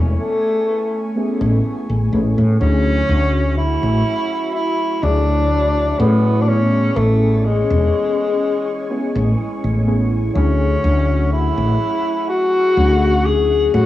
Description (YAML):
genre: vaporwave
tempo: 62 BPM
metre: 4/4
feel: straight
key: D lydian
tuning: A4 = 439 Hz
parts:
  - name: warbly lo-fi synth keys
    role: accompaniment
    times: 0.0-13.9 s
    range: E3 to C#5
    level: -24 LUFS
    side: left 1 dB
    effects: wide subtle chorus, analog delay
  - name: soft string machine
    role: sustained chords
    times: 0.0-13.9 s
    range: A3 to C#6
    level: -30 LUFS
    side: left 1 dB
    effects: phaser, ensemble chorus
  - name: woody fretless electric bass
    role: bass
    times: 0.0-13.9 s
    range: E1 to A2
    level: -16 LUFS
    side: equal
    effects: tube saturation
  - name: mellow tenor saxophone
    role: melody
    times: 0.2-13.9 s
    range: G#3 to G#4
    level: -19 LUFS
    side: left 1 dB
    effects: cassette tape, tape echo
room: light reverb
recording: home recording on cassette, small room ambience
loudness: -15 LUFS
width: side -14 dB against mid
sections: 0.0-13.9 A section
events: none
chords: 0.0 Amaj7; 2.6 Dmaj9#11; 6.5 Amaj7; 10.4 Dmaj9#11